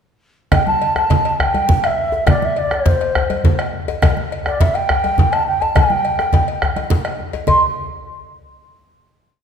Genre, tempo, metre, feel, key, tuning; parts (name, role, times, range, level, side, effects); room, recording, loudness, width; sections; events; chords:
west african traditional, West African drum ensemble; 138 BPM (dotted quarters); 12/8; straight; A4 = 440 Hz
mellow hollow bansuri; melody; 0.5-7.6 s; C5 to C6; -18 LUFS; equal
bombo; percussion; 0.5-7.6 s; -18 LUFS; equal
congas; percussion; 0.5-7.6 s; -23 LUFS; right 5 dB
cowbell; percussion; 0.5-7.6 s; -28 LUFS; left 6 dB
djembe; percussion; 0.5-7.6 s; -24 LUFS; left 6 dB
moderate scoring stage reverb, RT60 1.8 s; recorded in a church or concert hall; -14 LUFS; side -7 dB against mid
0.5-7.5 A section; 7.5-9.2 final note